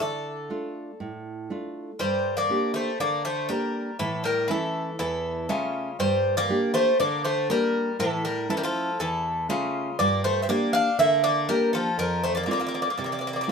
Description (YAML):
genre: greek folk, Greek bouzouki band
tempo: 120 BPM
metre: 4/4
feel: straight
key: unclear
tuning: A4 = 440 Hz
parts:
  - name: Greek bouzouki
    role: melody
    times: 0.0-13.5 s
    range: F4 to F5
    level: -25 LUFS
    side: left 1 dB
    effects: none
  - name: Greek bouzouki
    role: second line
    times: 0.0-13.5 s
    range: C#3 to A4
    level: -31 LUFS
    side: left 1 dB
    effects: none
  - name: nylon-string guitar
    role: accompaniment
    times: 0.0-13.5 s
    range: E2 to E5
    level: -29 LUFS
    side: right 2 dB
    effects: none
room: wet studio reverb, RT60 0.6 s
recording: minimal, uncompressed stereo recording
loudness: -23 LUFS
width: side -6 dB against mid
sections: 0.0-2.0 A section; 2.0-13.5 B section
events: none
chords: 0.0 Dm; 2.0 Gm; 4.0 A; 6.0 Gm; 8.0 A; 10.0 Gm; 12.0 F